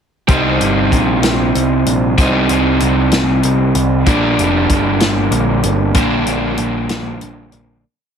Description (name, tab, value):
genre	indie rock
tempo	64 BPM (dotted quarters)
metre	6/8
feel	straight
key	C minor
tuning	A4 = 440 Hz
part	crunchy overdriven guitar	riff	0.3-7.8 s	Bb2 to Eb4	-14 LUFS	right 1 dB	none
part	growling picked electric bass	bass	0.3-7.8 s	F1 to C2	-18 LUFS	equal	overdrive
part	vintage drum kit	drums	0.3-7.7 s	hi-hat, kick drum, snare drum	-17 LUFS	left 1 dB	none
room	light reverb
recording	heavily compressed radio sound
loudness	-12 LUFS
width	side -7 dB against mid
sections	0.3-7.8 interlude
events	fade-out 6.0-7.8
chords	0.3 Cm7; 4.1 Gm